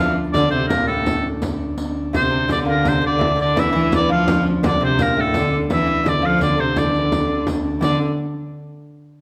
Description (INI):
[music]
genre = medieval dance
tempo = 112 BPM (dotted quarters)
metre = 6/8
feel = straight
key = D minor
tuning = A4 = 440 Hz
[part]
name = bright shawm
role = melody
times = 0.0-8.0 s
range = A4 to F5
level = -23 LUFS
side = equal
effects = none
[part]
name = lute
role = second line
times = 0.0-8.0 s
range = A2 to F3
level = -27 LUFS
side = equal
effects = none
[part]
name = rich viola da gamba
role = second line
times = 0.0-8.0 s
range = A2 to F3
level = -25 LUFS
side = equal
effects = none
[part]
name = pipe organ, plenum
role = drone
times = 0.0-7.9 s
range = D2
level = -29 LUFS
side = equal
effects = none
[part]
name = frame drum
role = percussion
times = 0.3-8.0 s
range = none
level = -29 LUFS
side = equal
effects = none
[part]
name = riq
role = percussion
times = 0.3-8.0 s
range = none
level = -29 LUFS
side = equal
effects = none
[sound]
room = wet recital hall reverb, RT60 1.4 s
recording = none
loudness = -19 LUFS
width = mono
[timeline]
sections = 0.0-7.8 A section; 7.8-8.9 B section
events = none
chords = none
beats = | 0.35 0.89 | 1.43 1.96 | 2.50 3.04 | 3.57 4.11 | 4.64 5.17 | 5.71 6.24 | 6.77 7.30 | 7.83